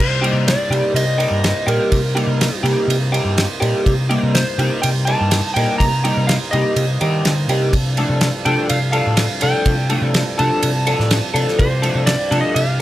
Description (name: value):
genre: psychedelic rock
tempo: 124 BPM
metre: 4/4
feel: straight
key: C dorian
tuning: A4 = 440 Hz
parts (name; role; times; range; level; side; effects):
- electric slide guitar; melody; 0.0-12.8 s; Bb4 to Bb5; -22 LUFS; equal; digital delay
- pedal harmonium; sustained chords; 0.0-12.8 s; F3 to C5; -31 LUFS; right 4 dB; none
- hollow-body short-scale picked electric bass; bass; 0.0-12.8 s; G2 to Eb3; -19 LUFS; equal; none
- pedal harmonium; drone; 0.0-12.8 s; C2 to G2; -30 LUFS; left 2 dB; none
- damped 70s drum kit; drums; 0.0-12.7 s; crash cymbal, kick drum, ride cymbal, snare drum; -21 LUFS; equal; none
- electric guitar through a small old amp; riff; 0.2-12.6 s; F3 to A4; -20 LUFS; equal; flanger
room: studio reverb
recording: none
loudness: -15 LUFS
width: side -14 dB against mid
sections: 0.0-12.8 A section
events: none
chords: 0.0 Cm7; 7.7 Dm/C